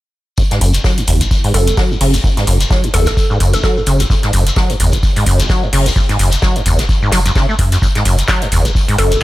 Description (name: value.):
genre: acid house.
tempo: 129 BPM.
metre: 4/4.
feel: swing 57% on 16ths.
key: F# minor.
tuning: A4 = 439 Hz.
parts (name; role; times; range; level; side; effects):
acid bass, saw; riff; 0.4-9.2 s; F#1 to A3; -16 LUFS; equal; overdrive, lush chorus, cassette tape, tape echo.
electronic kick drum; drums; 0.4-8.9 s; none; -15 LUFS; equal; none.
warm soul drum kit; drums; 0.4-9.1 s; hi-hat, snare drum, tambourine; -25 LUFS; left 2 dB; sidechain pumping on hats, high-pass filter on hats, high-pass filter on snare, sidechain pumping on perc, high-pass filter on perc, high-pass filter on room.
shekere; percussion; 0.4-9.2 s; none; -24 LUFS; left 3 dB; none.
booming analog drum machine; drums; 0.5-9.2 s; handclaps, hi-hat; -21 LUFS; equal; none.
round analog bass; bass; 0.6-9.2 s; F#1 to F#2; -15 LUFS; equal; sidechain pumping.
hollow square pluck; melody; 1.5-3.7, 9.0-9.2 s; A4; -20 LUFS; equal; chorus, ping-pong delay.
room: small room ambience.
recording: none.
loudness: -11 LUFS.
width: side -16 dB against mid.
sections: 0.4-9.2 A section.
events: none.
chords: none.